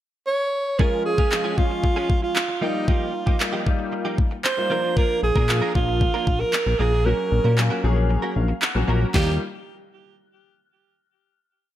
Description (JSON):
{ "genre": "dance-pop", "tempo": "115 BPM", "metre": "4/4", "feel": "straight", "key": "unclear", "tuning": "A4 = 442 Hz", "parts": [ { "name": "breathy alto saxophone", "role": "melody", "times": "0.3-9.4 s", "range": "Eb4 to Db5", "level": "-24 LUFS", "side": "right 3 dB", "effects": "none" }, { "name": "warm grand piano", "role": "accompaniment", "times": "0.8-9.4 s", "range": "F3 to Bb5", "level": "-28 LUFS", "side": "left 4 dB", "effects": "ensemble chorus, sidechain pumping" }, { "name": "direct-recorded clean electric guitar", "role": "riff", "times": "0.8-9.3 s", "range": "F3 to Bb4", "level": "-31 LUFS", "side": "right 4 dB", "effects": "ensemble chorus" }, { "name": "smooth R&B drum kit", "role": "drums", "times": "0.8-9.3 s", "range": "handclaps, kick drum, snare drum", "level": "-22 LUFS", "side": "left 1 dB", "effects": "gated reverb" }, { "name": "fat analog bass", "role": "bass", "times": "5.2-9.4 s", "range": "Bb1 to Bb2", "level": "-21 LUFS", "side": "left 1 dB", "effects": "sidechain pumping" } ], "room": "light reverb, studio ambience", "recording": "bright 1980s-style digital production", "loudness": "-19 LUFS", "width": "side -12 dB against mid", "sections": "0.0-0.8 pickup bar; 0.8-9.1 verse; 9.1-11.2 final chord", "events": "kick muted 7.1-9.1; grand piano fill 8.1-9.1", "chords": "0.0 N.C.; 0.8 Db; 2.6 Ebadd9; 4.7 Bb; 7.1 Gb/Bb; 9.1 Ebadd9", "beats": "0.27 | 0.79 1.32 1.84 2.36 | 2.88 3.40 3.92 4.45 | 4.97 5.49 6.01 6.53 | 7.05 7.58 8.10 8.62 | 9.14" }